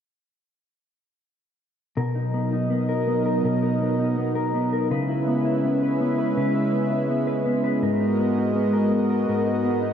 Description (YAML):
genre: dream pop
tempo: 82 BPM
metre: 4/4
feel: straight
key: B major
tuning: A4 = 440 Hz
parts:
  - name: warm analog pad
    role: sustained chords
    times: 2.0-9.9 s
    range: F#3 to E5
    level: -24 LUFS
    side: right 2 dB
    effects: chorus
  - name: mellow electric guitar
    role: arpeggios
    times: 2.0-9.9 s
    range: G#2 to B4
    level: -23 LUFS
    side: left 2 dB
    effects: lush chorus, ping-pong delay
room: wet huge ambient reverb, RT60 4.7 s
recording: none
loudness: -20 LUFS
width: side -8 dB against mid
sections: 2.0-9.9 A section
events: none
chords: 2.0 Bmaj7; 4.9 C#m7; 7.8 G#m9